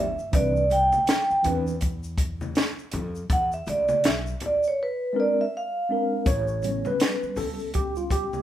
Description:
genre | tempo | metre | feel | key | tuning
hip hop, jazz-hop | 81 BPM | 4/4 | swing 60% on 16ths | unclear | A4 = 440 Hz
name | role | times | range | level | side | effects
vibraphone with soft mallets | melody | 0.0-6.2 s | B4 to G5 | -23 LUFS | right 2 dB | none
mellow tine electric piano | accompaniment | 0.0-8.4 s | E3 to C#5 | -27 LUFS | left 1 dB | medium stereo tremolo
upright bass | bass | 0.0-8.4 s | G1 to F2 | -31 LUFS | equal | none
tube shaker and congas | percussion | 0.2-8.4 s | none | -38 LUFS | left 4 dB | none
compact cocktail drum kit | drums | 0.3-8.3 s | hi-hat, kick drum, snare drum | -25 LUFS | equal | none
room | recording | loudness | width
light reverb | band playing live in one room | -22 LUFS | side -12 dB against mid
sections
0.0-6.3 A section; 6.3-8.4 A section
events
vibraphone solo 0.0-6.3; drums muted 4.8-6.3; tine electric piano solo 6.3-8.4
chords
0.3 Cmaj9; 3.3 E7; 5.5 Bb9; 6.3 A9

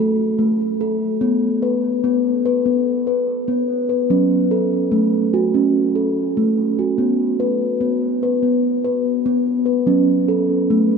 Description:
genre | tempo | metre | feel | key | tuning
world meditative, meditative tuned percussion | 146 BPM (eighths) | 7/8 | straight | F# minor | A4 = 440 Hz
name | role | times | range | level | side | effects
steel tongue drum | solo | 0.0-11.0 s | F#3 to B4 | -16 LUFS | equal | tape echo
room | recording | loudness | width
wet huge ambient reverb, RT60 7.3 s | in a vast, echoing space | -16 LUFS | side -5 dB against mid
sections
0.0-1.2 A section; 1.2-11.0 B section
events
none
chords
0.0 F#m; 1.2 N.C.; 4.1 F#m; 7.0 N.C.; 9.9 F#m

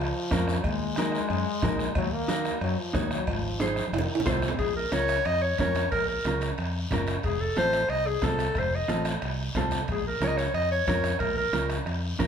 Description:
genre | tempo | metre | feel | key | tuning
latin, cumbia | 182 BPM | 4/4 | straight | Bb harmonic minor from 4.6 s | A4 = 441 Hz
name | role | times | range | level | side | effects
clear trombone | second line | 0.0-4.4 s | Eb3 to Bb3 | -32 LUFS | left 2 dB | none
fingered electric bass | bass | 0.0-12.3 s | F1 to Gb2 | -31 LUFS | equal | none
congas | percussion | 0.0-12.3 s | none | -37 LUFS | equal | none
mellow electric guitar | accompaniment | 0.3-12.3 s | C4 to Db5 | -32 LUFS | right 2 dB | none
bombo | percussion | 0.3-12.3 s | none | -32 LUFS | left 1 dB | none
cowbell and timbales | percussion | 0.3-12.3 s | none | -38 LUFS | right 4 dB | none
guiro | percussion | 0.3-12.3 s | none | -40 LUFS | left 2 dB | none
clear clarinet | melody | 4.6-11.7 s | Ab4 to Eb5 | -27 LUFS | equal | none
room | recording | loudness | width
moderate large studio reverb, RT60 1.2 s | band playing live in one room | -24 LUFS | side -7 dB against mid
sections
0.0-4.6 A section; 4.6-12.3 B section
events
drum fill 3.8-4.6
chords
0.0 Bbm; 0.6 Ebm; 3.3 Ab; 3.9 F7; 4.6 Bbm; 7.2 F; 9.9 Bbm

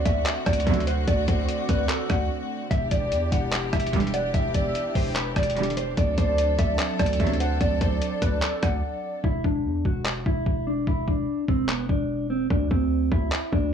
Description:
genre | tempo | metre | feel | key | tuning
hip hop, trap | 147 BPM | 4/4 | half-time | unclear | A4 = 440 Hz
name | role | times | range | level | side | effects
mellow electric guitar | melody | 0.0-13.7 s | B3 to F#5 | -28 LUFS | right 1 dB | tape echo
warm velvety synth lead | second line | 0.0-9.2 s | D5 to F#5 | -32 LUFS | left 1 dB | chorus, tape echo
warm studio string section | sustained chords | 0.0-9.2 s | D3 to A4 | -31 LUFS | equal | none
hard-hitting 808-style bass | bass | 0.0-13.7 s | E1 to E2 | -27 LUFS | equal | none
lo-fi sampler-style drum kit | drums | 0.1-13.6 s | handclaps, hi-hat, kick drum, rim click | -26 LUFS | equal | none
dark chamber string section | stabs | 0.7-1.0, 3.9-7.5 s | C3 to G3 | -29 LUFS | right 7 dB | none
room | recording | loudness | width
little or no reverb | small room ambience | -22 LUFS | side -8 dB against mid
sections
0.0-9.2 A section; 9.2-13.7 B section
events
break 2.3-2.7, 8.8-9.2; hi-hats muted 9.2-13.7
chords
0.0 D7; 2.7 Em7; 6.0 D7; 9.2 Dsus2/E; 12.5 D7(no3)

